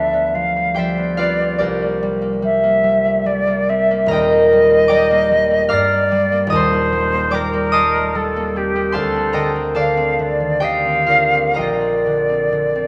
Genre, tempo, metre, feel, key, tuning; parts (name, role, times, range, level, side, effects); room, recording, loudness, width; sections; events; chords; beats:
classical, impressionist duo for flute and harp; 61-75 BPM; 3/4; rubato; A4 = 440 Hz
silver concert flute; melody; 0.0-12.9 s; G4 to F5; -20 LUFS; equal
concert harp; accompaniment; 0.0-12.9 s; Eb1 to F6; -19 LUFS; equal
wet scoring stage reverb, RT60 2.1 s; -17 LUFS; mono
0.0-12.9 A section
0.0 Dm6; 1.6 C9; 4.1 Ebmaj7; 5.7 Gm7; 6.5 Ebmaj7; 9.0 Dm7; 11.6 Bbadd9
0.78 | 1.61 2.44 3.27 | 4.11 4.92 5.73 | 6.54 7.35 8.16 | 8.97 9.79 10.64 | 11.59 12.54